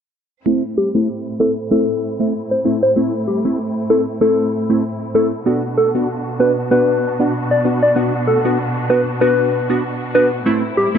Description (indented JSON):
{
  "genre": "dancehall",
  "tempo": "96 BPM",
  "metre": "4/4",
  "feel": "swing 56% on 16ths",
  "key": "A dorian",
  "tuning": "A4 = 441 Hz",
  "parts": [
    { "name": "wavetable chord stab", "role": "accompaniment", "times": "0.5-11.0 s", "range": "A3 to F#4", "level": "-19 LUFS", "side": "right 1 dB", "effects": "low-pass filter" },
    { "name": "warm studio string section", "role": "sustained chords", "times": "0.5-11.0 s", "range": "A2 to F#4", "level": "-23 LUFS", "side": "equal", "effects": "low-pass filter" },
    { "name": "soft struck synth lead", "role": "melody", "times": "0.8-10.9 s", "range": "G4 to D5", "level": "-17 LUFS", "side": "left 1 dB", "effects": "chorus, low-pass filter, tape echo" }
  ],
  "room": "light reverb, small room ambience",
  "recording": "dark, warm production",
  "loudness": "-15 LUFS",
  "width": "side -8 dB against mid",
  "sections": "0.5-11.0 A section",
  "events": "filter sweep 0.5-11.0",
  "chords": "0.5 Am; 5.5 Bm; 10.5 Am",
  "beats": "| 0.46 1.09 1.71 2.34 | 2.96 3.59 4.21 4.84 | 5.46 6.09 6.71 7.34 | 7.96 8.59 9.21 9.84 | 10.46"
}